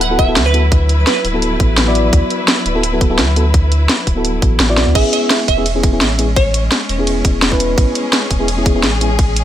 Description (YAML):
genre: liquid drum and bass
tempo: 170 BPM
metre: 4/4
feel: swing 53% on 16ths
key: A major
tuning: A4 = 440 Hz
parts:
  - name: glassy wavetable pluck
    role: melody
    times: 0.0-1.6, 5.0-6.7 s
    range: B4 to F#5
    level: -20 LUFS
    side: right 3 dB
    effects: chorus, digital delay
  - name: warm studio string section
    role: sustained chords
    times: 0.0-9.4 s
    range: F#3 to B4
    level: -22 LUFS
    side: left 2 dB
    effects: sidechain pumping
  - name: warm sub bass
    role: bass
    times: 0.0-9.4 s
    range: D1 to D2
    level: -16 LUFS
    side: equal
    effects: none
  - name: drum and bass drum kit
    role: drums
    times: 0.0-9.4 s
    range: crash cymbal, hi-hat, ride cymbal, snare drum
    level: -16 LUFS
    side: equal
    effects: studio reverb
  - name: mellow FM electric piano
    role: accompaniment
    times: 0.1-9.1 s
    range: B3 to D5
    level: -18 LUFS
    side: left 1 dB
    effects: chorus, cassette tape, digital delay
  - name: electronic kick drum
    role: drums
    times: 0.2-9.3 s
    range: none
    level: -14 LUFS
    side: equal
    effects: studio reverb
room: light reverb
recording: none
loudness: -11 LUFS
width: side -11 dB against mid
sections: 0.0-5.0 A section; 5.0-9.4 A section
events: drop 0.0-5.0, 5.0-9.4; drum fill 4.8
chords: 0.0 D69; 5.0 Amaj7